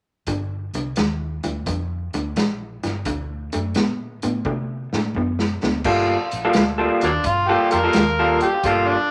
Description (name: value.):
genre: electric blues shuffle.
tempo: 86 BPM.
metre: 4/4.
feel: swing 68% on 8ths.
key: G minor.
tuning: A4 = 440 Hz.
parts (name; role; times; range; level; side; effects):
electric guitar through a small old amp; riff; 0.3-9.0 s; G2 to A4; -24 LUFS; equal; spring reverb.
vintage muted fingered electric bass; bass; 0.3-8.9 s; G1 to C3; -30 LUFS; equal; none.
vintage drum kit; drums; 0.3-8.9 s; crash cymbal, hi-hat, kick drum, snare drum, toms; -26 LUFS; equal; none.
overdriven harmonica; melody; 7.0-9.1 s; F#3 to Bb4; -22 LUFS; equal; none.
room: moderate studio reverb, RT60 0.5 s.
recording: none.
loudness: -21 LUFS.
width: mono.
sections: 0.3-5.9 A section; 5.9-9.1 B section.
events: drum fill 4.5-5.9; harmonica solo 5.9-9.1.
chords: 0.3 Gm7; 3.1 D7; 5.9 Gm9.